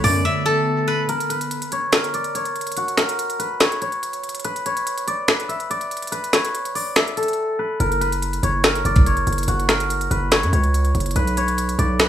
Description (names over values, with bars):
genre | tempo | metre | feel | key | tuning
hip hop, trap | 143 BPM | 4/4 | half-time | B minor | A4 = 440 Hz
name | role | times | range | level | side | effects
steel-string zither | melody | 0.0-12.1 s | F#4 to E5 | -22 LUFS | left 1 dB | low-pass filter, digital delay
bell-like tine electric piano | accompaniment | 0.0-1.1 s | D3 to B4 | -27 LUFS | right 1 dB | medium stereo tremolo
ethereal airy pad | sustained chords | 0.0-1.1 s | D3 to A4 | -30 LUFS | right 1 dB | ensemble chorus, built-in reverb
distorted 808-style bass | bass | 0.0-0.2, 7.8-12.1 s | F#1 to F#2 | -20 LUFS | equal | distortion
trap drum kit | drums | 0.0-12.1 s | finger snaps, hi-hat, kick drum, snare drum | -20 LUFS | equal | none
room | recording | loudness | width
light reverb | studio reverb | -18 LUFS | side -10 dB against mid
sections
0.0-1.1 A section; 1.1-12.1 B section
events
break 0.2-1.1, 1.1-7.8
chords
0.0 Bm7; 1.1 N.C.; 7.8 F#5; 11.2 Bm